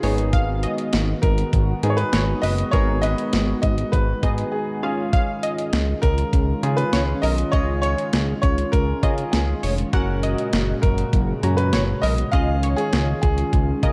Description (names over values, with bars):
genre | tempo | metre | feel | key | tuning
synth-pop | 100 BPM | 4/4 | straight | Db mixolydian | A4 = 441 Hz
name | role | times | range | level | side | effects
clear baby grand piano | melody | 0.0-13.9 s | Ab4 to F5 | -29 LUFS | equal | tape echo
funky polysynth comp | second line | 0.0-13.9 s | Bb4 to Gb5 | -33 LUFS | equal | chorus, tape echo
warm grand piano | accompaniment | 0.0-13.9 s | Cb4 to Bb5 | -31 LUFS | equal | none
chorused pulse-width pad | sustained chords | 0.0-13.9 s | Bb2 to Gb4 | -30 LUFS | equal | none
fat analog bass | bass | 0.0-13.9 s | F1 to Db3 | -25 LUFS | equal | none
clean 12-bit digital drum machine | drums | 0.0-13.9 s | hi-hat, kick drum, snare drum | -24 LUFS | equal | none
room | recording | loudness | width
light reverb, digital ambience | dark, warm production | -21 LUFS | mono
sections
0.0-13.9 A section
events
break 4.5-5.1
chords
0.0 Abm7; 4.8 Dbadd9; 9.9 Gbadd9; 12.3 Dbadd9